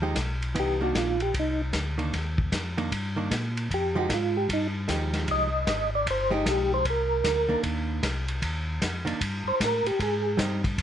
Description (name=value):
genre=soul jazz organ trio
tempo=153 BPM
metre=4/4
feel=swing 64% on 8ths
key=C minor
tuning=A4 = 440 Hz
part: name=hollow-body jazz guitar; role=accompaniment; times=0.0-10.6 s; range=Eb3 to G4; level=-30 LUFS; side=right 2 dB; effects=none
part: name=mellow tonewheel organ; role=bass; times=0.0-10.8 s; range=G1 to Bb2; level=-30 LUFS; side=left 1 dB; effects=chorus vibrato, slow rotary speaker
part: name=vintage drum kit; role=drums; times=0.2-10.8 s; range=hi-hat, kick drum, ride cymbal, snare drum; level=-30 LUFS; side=equal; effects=none
part: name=percussive tonewheel organ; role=melody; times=0.6-10.4 s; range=Eb4 to Eb5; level=-26 LUFS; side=equal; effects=slow rotary speaker, chorus vibrato, plate reverb
room=light reverb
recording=nothing above 10.9 kHz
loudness=-24 LUFS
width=side -10 dB against mid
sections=0.0-10.8 A section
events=tonewheel organ solo 0.0-10.8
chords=0.0 Fm9; 0.6 Cm9; 3.7 Fm9; 6.8 Cm9; 10.0 Abmaj7